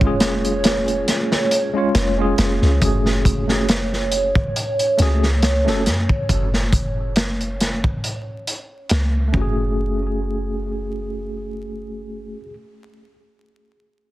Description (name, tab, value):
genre	trip hop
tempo	69 BPM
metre	4/4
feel	swing 55% on 16ths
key	F# harmonic minor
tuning	A4 = 440 Hz
part	tine electric piano	accompaniment	0.0-12.5 s	G#3 to C#5	-24 LUFS	equal	overdrive, fast stereo tremolo, tape echo
part	dark analog pad	sustained chords	0.0-9.3 s	C#5	-24 LUFS	right 2 dB	chorus, phaser
part	soft 808-style bass	bass	0.0-12.3 s	E#1 to F#2	-22 LUFS	equal	none
part	crunchy breakbeat drum kit	drums	0.0-9.5 s	hi-hat, kick drum, snare drum	-20 LUFS	equal	none
room	light reverb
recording	dense, heavily limited modern master, vinyl crackle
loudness	-17 LUFS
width	side -16 dB against mid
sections	0.0-2.8 A section; 2.8-9.8 B section; 9.8-13.3 C section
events	none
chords	0.0 C#/E#; 2.8 F#madd9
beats	0.21 1.08 1.95 | 2.82 3.69 4.56 5.43 | 6.29 7.17 8.04 8.90 | 9.77 10.64 11.51 12.38